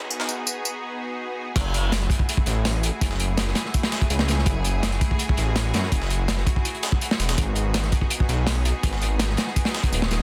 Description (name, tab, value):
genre	drum and bass, jungle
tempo	165 BPM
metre	4/4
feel	straight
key	F# dorian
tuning	A4 = 439 Hz
part	bright symphonic string section	sustained chords	0.0-10.2 s	A3 to G#4	-33 LUFS	equal	none
part	breakbeat sampler-style drum kit	drums	0.1-10.2 s	hi-hat, snare drum, tambourine	-33 LUFS	equal	high-pass filter on perc, high-pass filter on hats, high-pass filter on snare, high-pass filter on room
part	detuned saw bass	bass	1.6-10.2 s	D#1 to F#2	-26 LUFS	equal	tube saturation
part	crunchy breakbeat drum kit	drums	1.6-10.2 s	crash cymbal, hi-hat, kick drum, snare drum	-26 LUFS	equal	none
room	light reverb, small room ambience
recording	dense, heavily limited modern master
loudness	-23 LUFS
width	mono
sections	0.0-1.6 A section; 1.6-10.2 B section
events	break 0.8-1.6; drop 1.6-10.2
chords	0.0 G#m7; 1.6 F#m9; 7.4 G#m7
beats	| 0.10 0.47 0.83 1.20 | 1.56 1.92 2.29 2.65 | 3.01 3.38 3.74 4.11 | 4.47 4.83 5.20 5.56 | 5.92 6.29 6.65 7.01 | 7.38 7.74 8.11 8.47 | 8.83 9.20 9.56 9.92